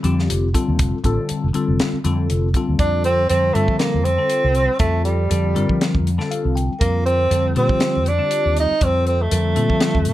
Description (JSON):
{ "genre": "electric jazz fusion", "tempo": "120 BPM", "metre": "4/4", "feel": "swing 54% on 16ths", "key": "F major", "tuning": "A4 = 440 Hz", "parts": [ { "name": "bell-like tine electric piano", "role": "accompaniment", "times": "0.0-10.1 s", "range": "D3 to G5", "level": "-23 LUFS", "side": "left 4 dB", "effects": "phaser" }, { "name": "fretless electric bass", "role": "bass", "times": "0.0-10.1 s", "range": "F1 to F3", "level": "-20 LUFS", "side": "equal", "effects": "lush chorus" }, { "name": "crisp fusion drum kit", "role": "drums", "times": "0.0-10.1 s", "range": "hi-hat, kick drum, snare drum", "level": "-22 LUFS", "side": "equal", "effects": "none" }, { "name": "breathy tenor saxophone", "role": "melody", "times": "2.8-10.1 s", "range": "G3 to Eb4", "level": "-19 LUFS", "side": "right 1 dB", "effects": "none" } ], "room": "light reverb", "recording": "dark, warm production", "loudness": "-16 LUFS", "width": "side -14 dB against mid", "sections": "0.0-2.8 A section; 2.8-10.1 B section", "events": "tine electric piano fill 6.1-6.8", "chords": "0.0 Fadd9; 2.8 C13sus4; 6.8 Fsus4", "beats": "0.29 | 0.79 1.29 1.79 2.29 | 2.79 3.30 3.80 4.30 | 4.80 5.30 5.80 6.31 | 6.81 7.31 7.81 8.32 | 8.82 9.32 9.82" }